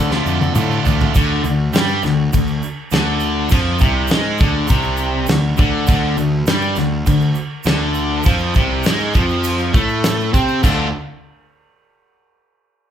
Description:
classic rock; 101 BPM; 4/4; straight; D minor; A4 = 440 Hz
distorted electric guitar; riff; 0.0-10.9 s; C3 to F4; -21 LUFS; left 8 dB; distortion
distorted electric guitar; riff; 0.0-10.9 s; C3 to A4; -21 LUFS; right 6 dB; overdrive
fuzz picked electric bass; bass; 0.0-10.9 s; C2 to C3; -21 LUFS; equal; overdrive
damped 70s drum kit; drums; 0.1-10.8 s; crash cymbal, kick drum, snare drum, toms; -18 LUFS; right 1 dB
egg shaker; percussion; 0.1-10.9 s; -34 LUFS; right 8 dB
moderate large studio reverb, RT60 0.9 s; band playing live in one room; -14 LUFS; side -9 dB against mid
0.0-1.2 A section; 1.2-10.6 B section; 10.6-12.9 C section
drum fill 0.0-1.2
0.0 Dm
0.56 | 1.15 1.74 2.33 2.93 | 3.52 4.11 4.70 5.30 | 5.89 6.48 7.07 7.67 | 8.26 8.85 9.44 10.04 | 10.63

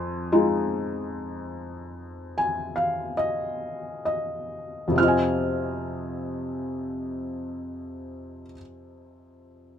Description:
classical, lyrical solo piano; 32-50 BPM; 4/4; rubato; F minor; A4 = 440 Hz
felt-muted upright piano; solo; 0.0-9.8 s; F2 to F6; -25 LUFS; left 1 dB
light reverb; minimal, uncompressed stereo recording; -25 LUFS; side -8 dB against mid
0.0-5.0 A section; 5.0-9.8 B section
slowing down 0.0-5.0; felt piano fill 1.6-5.0
0.0 Fm7
0.32 1.62 3.17 | 4.98 6.85 8.68

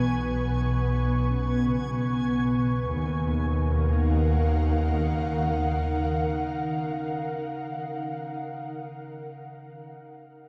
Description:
ambient; free time; Eb minor; A4 = 440 Hz
ethereal airy pad; sustained chords; 0.0-8.2 s; B2 to C#6; -30 LUFS; equal; ensemble chorus, built-in reverb
muted felt-like synth keys; arpeggios; 0.0-9.9 s; C#3 to A5; -43 LUFS; equal
dark chamber double bass section; bass; 0.0-6.2 s; B1 to Eb2; -28 LUFS; equal; tube saturation
backwards swelling texture; texture; 0.0-2.9 s; Ab5; -43 LUFS; equal; built-in reverb
wet huge ambient reverb, RT60 7.3 s; dark, warm production; -26 LUFS; mono
0.0-2.9 A section; 2.9-7.4 B section
0.0 Bmadd9; 2.9 Ebmadd9
free time

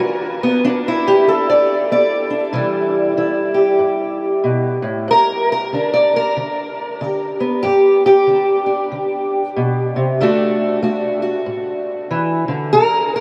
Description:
acoustic country blues, solo or duo; 94 BPM; 4/4; swing 61% on 8ths; G major; A4 = 440 Hz
fingerpicked steel-string acoustic guitar; solo; 0.0-13.2 s; G2 to D5; -17 LUFS; equal; analog chorus
wet huge ambient reverb, RT60 8.2 s; dreamy mix soaked in reverb; -17 LUFS; mono
0.0-13.2 A section
0.0 G; 2.5 C; 5.1 G5; 10.2 D
| 0.00 0.63 1.27 1.90 | 2.54 3.17 3.81 4.45 | 5.08 5.72 6.36 7.00 | 7.63 8.27 8.91 9.55 | 10.18 10.82 11.46 12.10 | 12.73

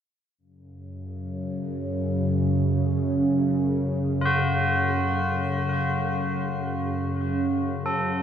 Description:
dark ambient drone; free time; A4 = 440 Hz
bowed-like drone; drone; 0.9-8.2 s; F#2 to C#3; -24 LUFS; equal; built-in reverb, phaser
tubular bells; arpeggios; 4.2-8.2 s; E#4 to A4; -26 LUFS; left 1 dB; analog delay, shimmer reverb
wet huge ambient reverb, RT60 7.5 s; dreamy mix soaked in reverb; -23 LUFS; side -9 dB against mid
0.4-8.2 A section
filter sweep on synth drone 0.4-8.2
0.4 F#5
free time

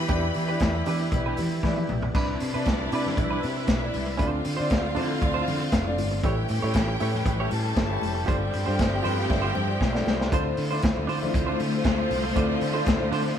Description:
disco; 118 BPM; 4/4; straight; D dorian; A4 = 440 Hz
clear studio string section; second line; 0.0-13.4 s; A3 to B5; -32 LUFS; left 2 dB
warm concert grand piano; accompaniment; 0.0-13.4 s; C3 to G5; -31 LUFS; left 2 dB
clear studio string section; sustained chords; 0.0-13.4 s; C3 to B4; -32 LUFS; right 1 dB
fingered electric bass; bass; 0.0-13.3 s; F1 to E3; -29 LUFS; equal
semi-hollow electric guitar; accompaniment; 0.1-13.3 s; D4 to C#5; -33 LUFS; right 5 dB
vintage drum kit; drums; 0.1-13.3 s; crash cymbal, hi-hat, kick drum, snare drum, toms; -27 LUFS; equal
congas; percussion; 0.1-13.0 s; -38 LUFS; left 5 dB
moderate stone room reverb, RT60 1.3 s; band playing live in one room; -23 LUFS; side -9 dB against mid
0.0-2.1 A section; 2.1-10.3 B section; 10.3-13.4 C section
drum fill 1.6-2.1, 9.3-10.3; grand piano fill 8.8-10.3
0.0 Em7; 2.1 Cmaj9; 4.2 Dm7; 6.2 A7; 8.3 G7sus4; 10.3 Dm7
| 0.09 0.61 1.12 1.63 | 2.15 2.66 3.17 3.68 | 4.20 4.71 5.22 5.73 | 6.24 6.75 7.26 7.77 | 8.28 8.79 9.30 9.81 | 10.32 10.83 11.34 11.85 | 12.35 12.86 13.37

